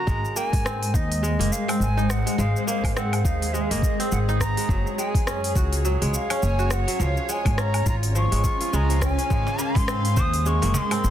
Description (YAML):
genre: organic downtempo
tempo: 104 BPM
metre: 4/4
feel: swing 58% on 16ths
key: Ab mixolydian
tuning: A4 = 438 Hz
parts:
  - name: bansuri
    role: melody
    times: 0.0-11.1 s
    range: Eb5 to Eb6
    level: -29 LUFS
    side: equal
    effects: ping-pong delay
  - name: kora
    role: arpeggios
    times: 0.0-11.1 s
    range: F3 to C5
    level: -30 LUFS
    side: right 1 dB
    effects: ping-pong delay
  - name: granular cloud pad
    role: sustained chords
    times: 0.2-11.1 s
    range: Ab3 to Ab5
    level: -29 LUFS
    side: equal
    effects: built-in reverb, sidechain pumping
  - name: upright bass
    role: bass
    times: 0.1-11.1 s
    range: Gb1 to Ab2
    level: -24 LUFS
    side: equal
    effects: sidechain pumping
  - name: deep house drum kit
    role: drums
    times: 0.1-11.1 s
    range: hi-hat, rim click, shaker, woodblock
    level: -31 LUFS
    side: left 1 dB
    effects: soft clipping on snare, small room reverb
  - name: electronic kick drum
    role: drums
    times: 0.1-10.3 s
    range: none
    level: -24 LUFS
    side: equal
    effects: overdrive, small room reverb
  - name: cajon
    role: percussion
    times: 9.5-10.9 s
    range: none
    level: -32 LUFS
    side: right 2 dB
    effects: none
room: small room ambience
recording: dense, heavily limited modern master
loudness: -20 LUFS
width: side -11 dB against mid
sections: 0.1-11.1 A section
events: none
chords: 0.1 Abadd9; 4.7 Gbsus2; 7.0 Db; 9.3 Abadd9